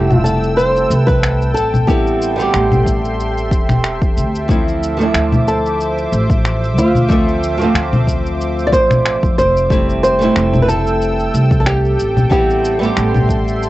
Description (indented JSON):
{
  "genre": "sunset chillout",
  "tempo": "92 BPM",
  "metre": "4/4",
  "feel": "swing 55% on 16ths",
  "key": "D dorian",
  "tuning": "A4 = 440 Hz",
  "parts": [
    { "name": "flamenco guitar", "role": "melody", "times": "0.0-13.7 s", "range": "F4 to D5", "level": "-17 LUFS", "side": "equal", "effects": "cassette tape, analog delay" },
    { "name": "flamenco guitar", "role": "accompaniment", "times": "0.0-13.7 s", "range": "F3 to E5", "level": "-19 LUFS", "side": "right 1 dB", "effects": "auto-pan, cassette tape, analog delay" },
    { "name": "lush unison pad", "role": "sustained chords", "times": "0.0-13.7 s", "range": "A4 to E6", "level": "-24 LUFS", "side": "equal", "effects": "chorus, vintage 12-bit sampler grit, cassette tape" },
    { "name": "upright bass", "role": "bass", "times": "0.0-13.7 s", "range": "E1 to F2", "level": "-18 LUFS", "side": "equal", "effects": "none" },
    { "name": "electronic congas, shaker and finger snaps", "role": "drums", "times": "0.1-13.7 s", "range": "none", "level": "-18 LUFS", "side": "left 1 dB", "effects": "cassette tape" },
    { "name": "electronic kick drum", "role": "drums", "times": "1.1-13.4 s", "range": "none", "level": "-17 LUFS", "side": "equal", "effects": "cassette tape" }
  ],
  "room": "moderate booth ambience, RT60 0.2 s",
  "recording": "home recording on cassette, nothing above 8.0 kHz",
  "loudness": "-12 LUFS",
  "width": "side -16 dB against mid",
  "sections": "0.0-13.7 A section",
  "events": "none",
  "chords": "0.0 Fmaj9; 1.9 Am7; 4.5 Dm9; 9.7 Fmaj9; 12.3 Am7"
}